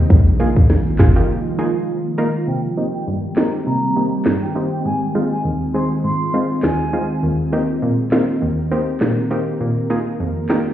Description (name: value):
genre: dancehall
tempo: 101 BPM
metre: 4/4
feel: swing 56% on 16ths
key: C minor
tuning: A4 = 440 Hz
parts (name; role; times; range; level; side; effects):
- ethereal airy pad; sustained chords; 0.0-10.7 s; Eb3 to Bb4; -21 LUFS; equal; ensemble chorus, built-in reverb, sidechain pumping, low-pass filter
- hard-hitting 808-style bass; bass; 0.1-1.2 s; Ab1 to Bb1; -15 LUFS; equal; none
- island pop drum kit; drums; 0.1-10.7 s; handclaps, hi-hat, kick drum, rim click, snare drum; -15 LUFS; equal; none
- maracas; percussion; 0.1-1.3 s; none; -55 LUFS; left 7 dB; none
- analog pluck; accompaniment; 0.4-10.7 s; Eb2 to Bb4; -21 LUFS; equal; chorus, low-pass filter
- mellow silver concert flute; melody; 2.5-7.1 s; G5 to C6; -26 LUFS; right 1 dB; low-pass filter, ping-pong delay
room: light reverb, digital ambience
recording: heard muffled through a wall, stone room reverb, EQ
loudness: -16 LUFS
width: side -11 dB against mid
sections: 0.0-2.5 A section; 2.5-10.7 B section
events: break 1.3-2.5; filter sweep 2.5-10.7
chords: 0.1 Bb7sus4; 2.5 Cm7; 4.9 Ab6; 7.2 Eb6; 9.6 Bb7sus4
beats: | 0.10 0.70 1.29 1.88 | 2.48 3.07 3.67 4.26 | 4.85 5.45 6.04 6.64 | 7.23 7.83 8.42 9.01 | 9.61 10.20